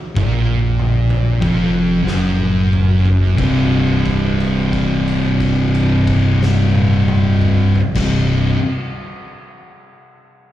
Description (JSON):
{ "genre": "stoner and doom metal", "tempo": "44-49 BPM", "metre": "4/4", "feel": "straight", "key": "unclear", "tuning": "A4 = 439 Hz", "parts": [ { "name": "thick fuzz guitar", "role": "riff", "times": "0.2-8.6 s", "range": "C2 to C3", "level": "-17 LUFS", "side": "left 4 dB", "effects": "distortion" }, { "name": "thick fuzz guitar", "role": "riff", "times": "0.2-8.6 s", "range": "C2 to C3", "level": "-17 LUFS", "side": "right 4 dB", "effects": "distortion" }, { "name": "growling fingered electric bass", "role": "bass", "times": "0.2-8.5 s", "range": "C1 to Bb1", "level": "-22 LUFS", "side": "equal", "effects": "overdrive" }, { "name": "oversized low-tuned drum kit", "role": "drums", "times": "0.2-8.3 s", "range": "crash cymbal, kick drum, snare drum, toms", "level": "-24 LUFS", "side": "equal", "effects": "none" } ], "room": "light reverb, small room ambience", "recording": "live gig heard through the venue's PA, club reverb", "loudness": "-13 LUFS", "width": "side -13 dB against mid", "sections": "0.0-3.4 A section; 3.4-8.8 B section", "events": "slowing down 0.0-3.4; drum fill 2.0-3.4; held note 3.4-8.0", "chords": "0.0 N.C.; 3.4 C5", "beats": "0.77 2.05 | 3.37 4.72 6.07 7.41" }